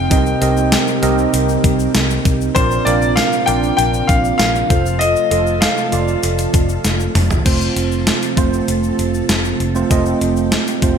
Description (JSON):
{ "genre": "1980s-style pop", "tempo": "98 BPM", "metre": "4/4", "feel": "straight", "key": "F mixolydian", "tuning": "A4 = 440 Hz", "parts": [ { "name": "clear concert grand piano", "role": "melody", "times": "0.0-6.2 s", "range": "C5 to G5", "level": "-19 LUFS", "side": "left 4 dB", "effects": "ping-pong delay" }, { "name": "mellow tine electric piano", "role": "accompaniment", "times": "0.0-11.0 s", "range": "Bb2 to F5", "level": "-19 LUFS", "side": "right 6 dB", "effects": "analog chorus" }, { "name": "ensemble organ-string", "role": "sustained chords", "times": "0.0-11.0 s", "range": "C3 to A4", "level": "-23 LUFS", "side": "equal", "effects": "ensemble chorus" }, { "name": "vintage muted fingered electric bass", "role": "bass", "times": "0.0-11.0 s", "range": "F1 to C2", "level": "-20 LUFS", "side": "left 1 dB", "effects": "none" }, { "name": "clean 12-bit digital drum machine", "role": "drums", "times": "0.1-11.0 s", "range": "crash cymbal, hi-hat, kick drum, snare drum, tambourine, toms", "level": "-17 LUFS", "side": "left 1 dB", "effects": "overdrive" }, { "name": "tube shaker", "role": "percussion", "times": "0.1-11.0 s", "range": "none", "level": "-32 LUFS", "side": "left 10 dB", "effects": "none" } ], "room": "moderate plate reverb, RT60 1.9 s, digital ambience", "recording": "bright 1980s-style digital production", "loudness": "-13 LUFS", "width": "side -7 dB against mid", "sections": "0.0-7.5 A section; 7.5-11.0 B section", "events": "drum fill 6.8-7.5", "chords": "0.1 Cm7; 2.6 Bbadd9; 4.7 F" }